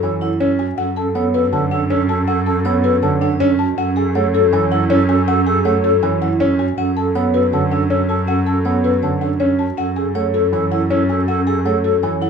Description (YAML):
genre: classical, minimalist pattern music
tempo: 160 BPM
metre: 4/4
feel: straight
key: F# minor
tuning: A4 = 440 Hz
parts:
  - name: buzzing marimba with soft mallets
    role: melody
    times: 0.0-12.3 s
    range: A4 to A5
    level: -21 LUFS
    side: left 10 dB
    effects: none
  - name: bright alto flute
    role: second line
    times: 0.0-12.3 s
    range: A4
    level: -25 LUFS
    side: right 4 dB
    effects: none
  - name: warm concert grand piano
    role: accompaniment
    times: 0.0-12.3 s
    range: D3 to C#4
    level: -20 LUFS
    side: right 3 dB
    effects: none
  - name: vibraphone with soft mallets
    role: arpeggios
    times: 0.0-12.3 s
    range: C#4 to C#5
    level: -21 LUFS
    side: right 6 dB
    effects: none
  - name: clear cello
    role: bass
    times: 0.0-12.3 s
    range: F#2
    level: -20 LUFS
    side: right 1 dB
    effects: none
room: light reverb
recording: dark, warm production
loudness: -14 LUFS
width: side -6 dB against mid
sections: 0.0-12.3 A section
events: none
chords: 0.0 F#m7; 0.8 Bm7/F#; 3.8 F#m7; 6.8 Bm7/F#; 9.8 F#m7